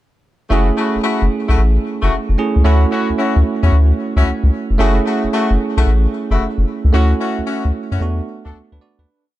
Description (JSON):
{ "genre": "R&B", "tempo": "112 BPM", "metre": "4/4", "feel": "swing 66% on 16ths", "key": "F# minor", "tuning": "A4 = 440 Hz", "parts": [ { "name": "bell-like tine electric piano", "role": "accompaniment", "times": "0.5-9.2 s", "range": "A3 to D5", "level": "-20 LUFS", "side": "right 4 dB", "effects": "none" }, { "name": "mellow horn section", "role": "stabs", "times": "0.5-8.6 s", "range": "A3 to A4", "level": "-22 LUFS", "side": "left 5 dB", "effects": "ping-pong delay" }, { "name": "round analog bass", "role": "bass", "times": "0.5-9.1 s", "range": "E#1 to F#2", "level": "-13 LUFS", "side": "equal", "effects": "none" } ], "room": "small room ambience", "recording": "dark, warm production", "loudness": "-14 LUFS", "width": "side -15 dB against mid", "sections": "0.5-9.1 verse", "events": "fade-out 6.9-9.1", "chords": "0.5 F#m7; 2.6 Dmaj9; 4.8 F#m7; 6.9 Dmaj9; 8.0 E9sus4" }